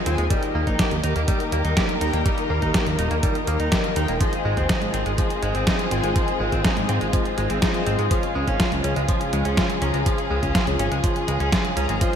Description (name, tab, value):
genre	italo disco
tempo	123 BPM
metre	4/4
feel	straight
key	unclear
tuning	A4 = 437 Hz
part	warm studio string section	sustained chords	0.0-12.2 s	Db3 to Bb4	-27 LUFS	left 1 dB	none
part	analog synth brass	stabs	0.0-12.2 s	Eb4 to Bb5	-28 LUFS	left 3 dB	chorus, ping-pong delay
part	direct-recorded clean electric guitar	arpeggios	0.1-12.1 s	F3 to G4	-29 LUFS	right 2 dB	wide subtle chorus, low-pass filter, ping-pong delay
part	fat analog bass	bass	0.1-12.0 s	Eb1 to Ab2	-26 LUFS	equal	none
part	detuned 8-bit digital drum machine	drums	0.1-12.2 s	hi-hat, snare drum	-26 LUFS	equal	gated reverb
part	electronic kick drum	drums	0.3-12.1 s	none	-24 LUFS	equal	overdrive
room	moderate lush hall reverb, RT60 1.8 s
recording	bright 1980s-style digital production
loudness	-19 LUFS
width	side -8 dB against mid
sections	0.0-12.2 A section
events	none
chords	0.3 Eb; 4.2 Ab6; 8.1 Db